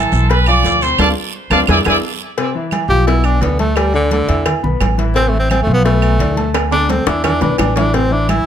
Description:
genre	latin, salsa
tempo	172 BPM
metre	4/4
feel	straight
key	unclear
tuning	A4 = 438 Hz
part	bright trumpet section	melody	0.0-1.9 s	A4 to D6	-16 LUFS	right 2 dB	analog delay
part	warm concert grand piano	accompaniment	0.0-8.4 s	B2 to E6	-21 LUFS	left 5 dB	none
part	upright bass	bass	0.0-8.4 s	A1 to E2	-16 LUFS	equal	none
part	congas	percussion	0.1-8.5 s	none	-24 LUFS	right 1 dB	none
part	guiro	percussion	0.1-1.9 s	none	-30 LUFS	right 9 dB	none
part	agogo bells and timbales	percussion	0.3-8.5 s	none	-23 LUFS	right 7 dB	none
part	cowbell and bongos	percussion	0.3-8.5 s	none	-23 LUFS	left 4 dB	none
part	claves	percussion	0.5-8.5 s	none	-26 LUFS	right 10 dB	none
part	warm tenor saxophone	melody	2.9-8.5 s	D3 to G4	-17 LUFS	equal	none
room	light reverb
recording	close, detailed microphones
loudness	-12 LUFS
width	side -9 dB against mid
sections	0.0-2.4 A section; 2.4-8.5 B section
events	band accent 1.0-2.4; drum fill 1.3-2.4, 6.5-7.9; tenor saxophone solo 2.4-8.5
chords	0.3 Bdim; 1.0 Dm7; 1.7 E7; 2.4 Cadd11; 3.1 Bm7; 3.8 D5; 4.5 E5; 5.2 Am; 5.9 Bm7; 6.5 D5; 7.2 E5; 7.9 Am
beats	0.30 0.64 | 0.99 1.34 1.68 2.03 | 2.38 2.72 3.07 3.42 | 3.77 4.11 4.46 4.81 | 5.16 5.50 5.85 6.20 | 6.55 6.90 7.25 7.59 | 7.94 8.29

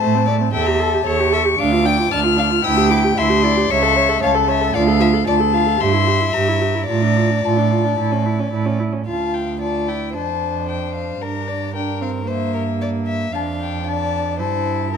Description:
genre	quick classical-period movement for string quartet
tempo	113 BPM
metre	4/4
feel	straight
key	D minor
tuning	A4 = 436 Hz
part	rich violin	melody	0.0-15.0 s	E5 to F6	-21 LUFS	left 12 dB	none
part	rich violin	second line	0.0-15.0 s	Bb4 to A5	-24 LUFS	left 4 dB	none
part	warm viola	accompaniment	0.0-15.0 s	A3 to C#5	-22 LUFS	right 3 dB	none
part	rich cello	bass	0.0-15.0 s	C#2 to A2	-20 LUFS	right 5 dB	none
room	moderate recital hall reverb, RT60 1.4 s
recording	close, detailed microphones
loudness	-16 LUFS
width	side -6 dB against mid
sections	0.0-9.1 A section; 9.1-15.0 B section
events	none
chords	0.0 Am; 0.5 A7/E; 1.6 Dm; 2.6 D9sus4; 3.7 A/C#; 4.8 Dm; 5.8 Edim/G; 6.9 Dm/A; 8.0 A; 9.1 Dm; 10.2 Dm/F; 11.2 Gm; 12.3 Edim/G; 13.3 Dm/F; 14.4 Em/G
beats	0.01 | 0.53 1.06 1.59 2.12 | 2.65 3.17 3.70 4.23 | 4.75 5.28 5.81 6.34 | 6.89 7.44 7.99 8.53 | 9.08 9.62 10.15 10.69 | 11.22 11.76 12.29 12.82 | 13.35 13.88 14.40 14.93

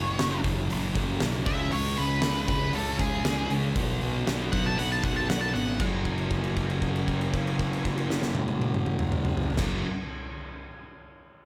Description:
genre	garage rock duo or trio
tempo	117 BPM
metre	4/4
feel	straight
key	unclear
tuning	A4 = 440 Hz
part	octave-fuzz lead guitar	melody	0.0-5.8 s	G#4 to A5	-33 LUFS	equal	distortion
part	thick fuzz guitar	riff	0.0-9.8 s	F#2 to C#4	-33 LUFS	equal	distortion
part	fuzz picked electric bass	bass	0.0-9.8 s	F#1 to C#2	-34 LUFS	equal	overdrive
part	oversized low-tuned drum kit	drums	0.2-9.7 s	crash cymbal, hi-hat, kick drum, snare drum, toms	-32 LUFS	equal	none
room	light reverb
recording	none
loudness	-28 LUFS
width	mono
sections	0.0-5.8 A section; 5.8-9.9 B section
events	lead electric guitar solo 0.0-5.8; held note 5.8-9.6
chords	0.0 F#5; 1.5 C#5; 3.8 B5; 5.8 F#5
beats	0.19 0.70 1.21 | 1.72 2.23 2.74 3.25 | 3.76 4.27 4.79 5.30 | 5.81 6.32 6.83 7.35 | 7.86 8.37 8.88 9.40

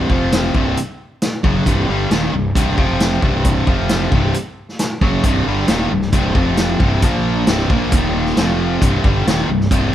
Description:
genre	classic rock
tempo	134 BPM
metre	4/4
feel	straight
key	unclear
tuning	A4 = 438 Hz
part	cranked stack guitar	riff	0.0-9.9 s	C2 to Bb3	-20 LUFS	right 5 dB	overdrive
part	overdriven electric guitar	riff	0.0-9.9 s	C2 to Bb3	-20 LUFS	left 5 dB	none
part	fuzz fingered electric bass	bass	0.0-9.9 s	C1 to Bb1	-22 LUFS	equal	overdrive
part	vintage drum kit	drums	0.1-9.8 s	hi-hat, kick drum, snare drum	-18 LUFS	equal	none
room	light reverb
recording	band playing live in one room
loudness	-14 LUFS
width	side -11 dB against mid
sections	0.0-9.9 A section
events	none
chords	0.1 F5; 0.5 C5; 2.8 F5; 3.2 C5; 3.7 F5; 4.1 C5; 6.4 F5; 6.8 C5; 7.0 Bb5; 7.5 C5; 7.9 Eb5; 8.4 F5; 8.8 C5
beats	0.32 0.77 1.22 | 1.67 2.11 2.56 3.01 | 3.45 3.90 4.35 4.79 | 5.24 5.69 6.13 6.58 | 7.03 7.47 7.92 8.37 | 8.82 9.26 9.71

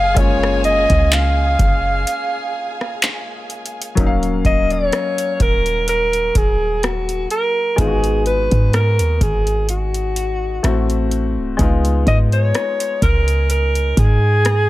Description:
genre	contemporary R&B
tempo	63 BPM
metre	4/4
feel	swing 54% on 16ths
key	Eb minor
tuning	A4 = 441 Hz
part	breathy alto saxophone	melody	0.0-14.7 s	Gb4 to F5	-19 LUFS	equal	none
part	clear grand piano	accompaniment	0.0-14.7 s	Gb3 to F5	-25 LUFS	left 4 dB	none
part	warm studio string section	sustained chords	0.0-3.9 s	Ab4 to Ab5	-28 LUFS	right 1 dB	sidechain pumping
part	clean 808-style bass	bass	0.0-14.7 s	C1 to Ab2	-18 LUFS	equal	none
part	booming analog drum machine	drums	0.2-14.7 s	handclaps, hi-hat, kick drum, rim click	-19 LUFS	equal	overdrive
room	small room ambience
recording	none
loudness	-14 LUFS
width	side -16 dB against mid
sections	0.0-4.0 A section; 4.0-14.7 B section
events	break 2.1-4.0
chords	0.0 Gbmaj9; 4.0 Ebm7; 7.8 Abm7; 10.6 Am6; 11.6 Db7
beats	| 0.17 1.12 2.07 3.02 | 3.97 4.93 5.88 6.83 | 7.78 8.74 9.69 10.64 | 11.59 12.55 13.50 14.45

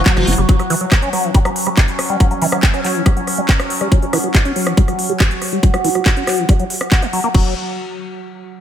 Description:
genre	psychedelic trance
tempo	140 BPM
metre	4/4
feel	straight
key	unclear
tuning	A4 = 441 Hz
part	overtone-sweeping drone	sustained chords	0.0-7.4 s	F#3 to F#4	-22 LUFS	right 1 dB	chorus, built-in reverb, phaser, sidechain pumping
part	tight sequencer bass	bass	0.0-0.5, 7.3-7.5 s	F#1	-18 LUFS	equal	none
part	liquid acid bass	riff	0.1-7.5 s	E3 to G4	-21 LUFS	moving between left 4 dB and right 3 dB	phaser, auto-pan, sidechain pumping, dub echo
part	drum and bass drum kit	drums	0.1-7.4 s	crash cymbal, handclaps, hi-hat, rim click	-21 LUFS	equal	small room ambience
part	electronic kick drum	drums	0.1-7.4 s	none	-13 LUFS	equal	small room ambience
room	light reverb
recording	none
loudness	-13 LUFS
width	side -10 dB against mid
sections	0.0-7.3 A section; 7.3-8.6 B section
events	filter sweep on acid bass 0.0-7.3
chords	0.0 F#5; 7.3 N.C.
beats	0.06 | 0.49 0.92 1.34 1.77 | 2.20 2.63 3.06 3.49 | 3.92 4.34 4.77 5.20 | 5.63 6.06 6.49 6.92 | 7.34

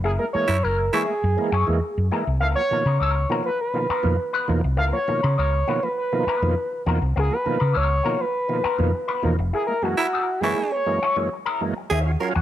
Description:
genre	funk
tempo	101 BPM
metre	4/4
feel	straight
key	Db mixolydian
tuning	A4 = 440 Hz
part	expressive synth lead	melody	0.0-11.3 s	Gb4 to F5	-24 LUFS	equal	chorus
part	electric guitar with an envelope filter	accompaniment	0.0-12.4 s	Cb4 to Gb5	-28 LUFS	left 5 dB	wah
part	hollow-body short-scale fingered electric bass	bass	0.0-12.4 s	F1 to Db3	-22 LUFS	equal	none
part	overdriven tonewheel organ	stabs	0.2-12.3 s	Gb2 to F4	-28 LUFS	right 3 dB	chorus vibrato, slow rotary speaker
part	growling tenor saxophone	second line	0.5-1.0, 10.0-12.3 s	Fb4 to Bb4	-26 LUFS	right 4 dB	none
room	light reverb, digital ambience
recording	none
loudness	-20 LUFS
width	side -12 dB against mid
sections	0.0-11.9 A section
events	band accent 0.0-2.4, 9.5-11.9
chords	0.0 Gb9; 2.4 Db13; 9.5 Gb9; 11.9 Ebm9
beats	| 0.04 0.64 1.23 1.82 | 2.41 3.00 3.60 4.19 | 4.78 5.38 5.97 6.56 | 7.16 7.75 8.34 8.94 | 9.53 10.13 10.72 11.31 | 11.91

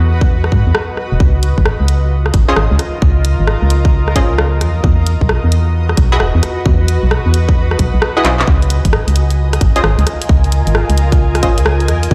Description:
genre	UK garage, two-step garage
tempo	132 BPM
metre	4/4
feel	swing 65% on 16ths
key	Db major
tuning	A4 = 440 Hz
part	organ-like FM bass	bass	0.0-12.1 s	E1 to G#2	-15 LUFS	equal	none
part	granular cloud pad	texture	0.0-12.1 s	F4 to Eb5	-24 LUFS	equal	built-in reverb, sidechain pumping
part	electronic kick drum	drums	0.2-12.1 s	none	-15 LUFS	equal	none
part	garage drum kit	drums	0.4-12.1 s	handclaps, hi-hat, rim click	-21 LUFS	equal	none
part	punchy chord stab	stabs	2.5-11.9 s	Db4 to Eb5	-20 LUFS	equal	chorus, dub echo
part	soft string machine	sustained chords	8.5-12.1 s	Ab5	-30 LUFS	equal	phaser, ensemble chorus, sidechain pumping
room	light reverb, digital ambience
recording	played on a big sound system in a bare room, large studio reverb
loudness	-13 LUFS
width	mono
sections	0.0-12.1 A section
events	drum fill 8.2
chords	0.0 Emaj7sus2; 1.2 Dbmaj9; 4.6 Emaj9; 8.5 Dbmaj9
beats	0.29 0.75 | 1.20 1.66 2.11 2.57 | 3.02 3.48 3.93 4.38 | 4.84 5.29 5.75 6.20 | 6.66 7.11 7.57 8.02 | 8.47 8.93 9.38 9.84 | 10.29 10.75 11.20 11.66 | 12.11

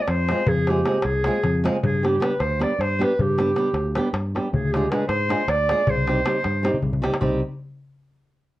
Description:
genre	balkan folk, Balkan wedding band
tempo	312 BPM (eighths)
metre	7/8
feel	straight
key	C harmonic minor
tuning	A4 = 439 Hz
part	warm clarinet	melody	0.0-6.8 s	G4 to D5	-23 LUFS	right 1 dB	none
part	fingered electric bass	bass	0.1-7.4 s	C2 to Ab2	-25 LUFS	equal	none
part	darbuka	percussion	0.1-7.4 s	none	-26 LUFS	left 2 dB	none
part	flamenco guitar	accompaniment	0.3-7.4 s	G3 to Ab4	-25 LUFS	right 1 dB	none
room	moderate small room reverb, RT60 0.5 s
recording	worn, warbling old tape, cassette tape, warbly pitch drift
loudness	-19 LUFS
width	side -16 dB against mid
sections	0.0-7.2 A section; 7.2-8.6 B section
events	drum fill 6.7-7.2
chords	0.0 Fm; 1.8 G; 4.5 Ddim; 5.9 Cm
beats	0.09 0.28 | 0.48 0.67 0.87 1.06 1.26 1.45 1.65 | 1.84 2.03 2.23 2.42 2.61 2.81 3.00 | 3.19 3.38 3.58 3.77 3.96 4.16 4.35 | 4.54 4.73 4.92 5.12 5.31 5.50 5.69 | 5.88 6.08 6.27 6.46 6.65 6.84 7.03 | 7.22

